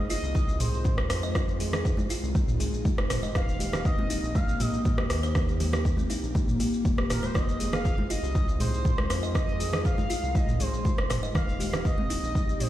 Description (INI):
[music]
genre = afro house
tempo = 120 BPM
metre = 4/4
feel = straight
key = F minor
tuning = A4 = 441 Hz
[part]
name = expressive synth lead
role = melody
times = 0.0-12.7 s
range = Bb4 to F5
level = -36 LUFS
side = right 1 dB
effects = lush chorus, ping-pong delay
[part]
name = ethereal airy pad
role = sustained chords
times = 0.1-12.7 s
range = Ab3 to G4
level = -36 LUFS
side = left 3 dB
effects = ensemble chorus, built-in reverb, sidechain pumping
[part]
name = kalimba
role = arpeggios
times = 0.0-12.7 s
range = C4 to Eb5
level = -36 LUFS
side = right 2 dB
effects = sidechain pumping, ping-pong delay
[part]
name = round analog bass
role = bass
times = 0.0-12.7 s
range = Eb1 to F2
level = -31 LUFS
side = equal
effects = tube saturation, sidechain pumping
[part]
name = afro-pop drum kit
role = drums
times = 0.1-12.7 s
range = hi-hat, rim click, shaker, toms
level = -33 LUFS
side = right 1 dB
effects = overdrive
[part]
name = congas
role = percussion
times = 0.1-12.7 s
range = none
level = -36 LUFS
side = right 1 dB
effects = none
[part]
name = electronic kick drum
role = drums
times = 0.4-12.5 s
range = none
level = -27 LUFS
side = equal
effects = none
[sound]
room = light reverb, digital ambience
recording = played on a big sound system in a bare room, stone room reverb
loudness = -24 LUFS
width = side -13 dB against mid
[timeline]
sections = 0.0-12.7 A section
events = none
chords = 0.0 Fm7; 3.4 Eb; 7.4 Fm7; 11.4 Eb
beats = 0.35 0.85 | 1.35 1.85 2.35 2.85 | 3.35 3.85 4.35 4.85 | 5.35 5.85 6.35 6.85 | 7.35 7.85 8.35 8.85 | 9.35 9.85 10.35 10.85 | 11.35 11.85 12.35